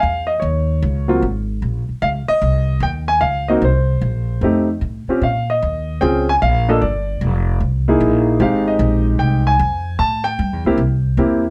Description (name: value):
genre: jazz piano trio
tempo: 151 BPM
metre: 4/4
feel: swing 67% on 8ths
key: unclear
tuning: A4 = 440 Hz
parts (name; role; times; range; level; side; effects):
- warm grand piano; melody; 0.0-11.4 s; Gb3 to A5; -20 LUFS; equal; none
- upright bass; bass; 0.0-11.5 s; F1 to Bb2; -21 LUFS; equal; none
room: moderate club ambience, RT60 0.5 s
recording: heard from further back in the room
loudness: -17 LUFS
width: mono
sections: 0.0-11.5 A section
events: none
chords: 0.4 Eb7(no3); 1.2 Absus2; 2.0 Dbsus2; 3.6 Bbsus2; 4.4 F7; 5.2 Bbm; 6.8 G5; 7.6 C7alt; 8.4 Fm7; 10.0 A7; 10.8 C7